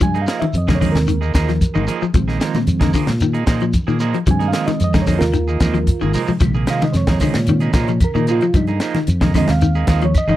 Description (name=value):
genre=afrobeat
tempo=112 BPM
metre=4/4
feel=straight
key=unclear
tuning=A4 = 440 Hz
part: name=reed electric piano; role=accompaniment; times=0.0-10.4 s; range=C3 to Ab5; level=-21 LUFS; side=right 4 dB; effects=phaser
part: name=clean electric guitar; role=arpeggios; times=0.0-10.4 s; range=Bb2 to F3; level=-21 LUFS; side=left 6 dB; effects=none
part: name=fingered electric bass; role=bass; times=0.0-10.4 s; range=Ab1 to Bb2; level=-19 LUFS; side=equal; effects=none
part: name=tight funk drum kit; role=drums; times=0.0-10.3 s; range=hi-hat, kick drum, snare drum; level=-20 LUFS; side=equal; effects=none
part: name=congas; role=percussion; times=0.0-10.4 s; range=none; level=-25 LUFS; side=right 2 dB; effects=none
part: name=shekere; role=percussion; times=0.0-10.4 s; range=none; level=-24 LUFS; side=left 1 dB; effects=none
part: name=electric guitar at the edge of break-up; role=stabs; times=0.1-10.4 s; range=F3 to Ab4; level=-25 LUFS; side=right 8 dB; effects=none
part: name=claves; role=percussion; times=6.4-10.3 s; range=none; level=-39 LUFS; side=equal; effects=none
room=little or no reverb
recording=dry, close 1970s-style studio recording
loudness=-14 LUFS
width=side -14 dB against mid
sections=0.0-10.4 A section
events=reed electric piano solo 0.0-10.4; drum fill 5.6-6.4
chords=0.0 Bb7sus4